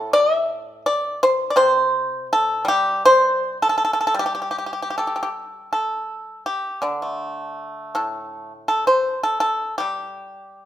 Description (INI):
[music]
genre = chinese traditional, Chinese solo plucked strings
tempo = 81 BPM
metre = 4/4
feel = rubato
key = G zhi mode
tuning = A4 = 439 Hz
[part]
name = pipa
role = solo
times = 0.0-10.7 s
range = A2 to E5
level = -18 LUFS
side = equal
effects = none
[sound]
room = light reverb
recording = minimal, uncompressed stereo recording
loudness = -18 LUFS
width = side -12 dB against mid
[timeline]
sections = 0.0-5.7 A section; 5.7-10.7 B section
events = none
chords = none